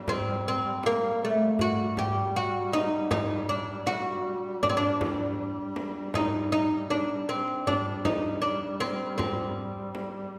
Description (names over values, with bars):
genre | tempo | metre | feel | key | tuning
Arabic maqam ensemble | 79 BPM | 4/4 | straight | G maqam nahawand | A4 = 436 Hz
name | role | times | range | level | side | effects
oud | melody | 0.0-9.5 s | A3 to G4 | -30 LUFS | equal | none
warm duduk | drone | 0.0-10.4 s | G3 | -40 LUFS | equal | none
darbuka | percussion | 0.1-10.1 s | none | -41 LUFS | equal | none
frame drum | percussion | 0.1-10.1 s | none | -39 LUFS | equal | none
room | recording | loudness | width
wet scoring stage reverb, RT60 1.8 s | recorded in a church or concert hall | -28 LUFS | mono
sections
0.0-10.4 A section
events
drum fill 6.9-7.7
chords
none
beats
0.08 0.83 | 1.59 2.35 3.11 3.87 | 4.63 5.39 6.15 6.91 | 7.67 8.43 9.19 9.95